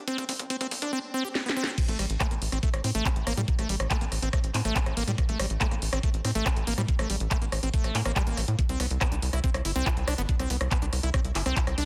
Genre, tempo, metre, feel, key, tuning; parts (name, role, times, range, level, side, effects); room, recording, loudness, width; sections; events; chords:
psychedelic trance; 141 BPM; 4/4; straight; A4 = 439 Hz
tight sequencer bass; bass; 0.0-11.9 s; G1 to A2; -32 LUFS; equal; high-pass filter
liquid acid bass; riff; 0.1-11.8 s; G3 to G4; -35 LUFS; equal; chorus, sidechain pumping, tape echo
drum and bass drum kit; drums; 0.1-11.9 s; crash cymbal, handclaps, hi-hat, rim click, snare drum; -34 LUFS; equal
electronic kick drum; drums; 0.1-11.7 s; -29 LUFS; equal; high-pass filter on kick, high-pass filter on room
light reverb, digital ambience; dense, heavily limited modern master; -28 LUFS; mono
0.0-1.8 A section; 1.8-11.9 B section
build-up 0.0-1.8; drum fill 0.0-0.9, 1.4-1.8; drop 1.8-11.9
0.0 C5; 1.8 N.C.; 8.6 C5